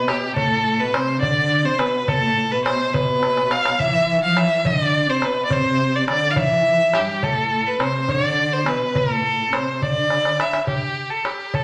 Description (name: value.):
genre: Arabic maqam ensemble.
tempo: 70 BPM (dotted quarters).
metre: 6/8.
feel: straight.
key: unclear.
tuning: A4 = 445 Hz.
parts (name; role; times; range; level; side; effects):
rich violin; melody; 0.0-11.6 s; G4 to F5; -22 LUFS; equal; none.
dark studio cello section; second line; 0.0-10.7 s; G2 to F3; -27 LUFS; equal; none.
darbuka; percussion; 0.1-11.6 s; none; -27 LUFS; equal; none.
room: wet large studio reverb, RT60 0.9 s.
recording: none.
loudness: -20 LUFS.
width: mono.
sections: 0.0-10.7 A section.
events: drum fill 3.2-3.8, 10.1-10.7.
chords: none.